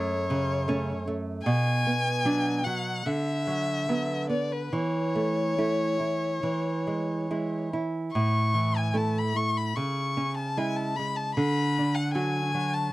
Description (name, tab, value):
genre	romantic duo for violin and classical guitar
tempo	73 BPM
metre	4/4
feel	uneven beats, rubato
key	A major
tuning	A4 = 437 Hz
part	warm violin	melody	0.0-12.9 s	B4 to C#6	-30 LUFS	left 3 dB	none
part	nylon-string guitar	accompaniment	0.0-12.9 s	F#2 to F#4	-27 LUFS	right 1 dB	none
room	light reverb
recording	cassette tape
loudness	-25 LUFS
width	side -17 dB against mid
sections	0.0-12.9 A section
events	none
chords	0.0 F#m; 1.5 Bm; 3.1 Bm/D; 4.7 A/E; 6.4 E; 8.1 A5; 9.8 C#m; 11.4 D6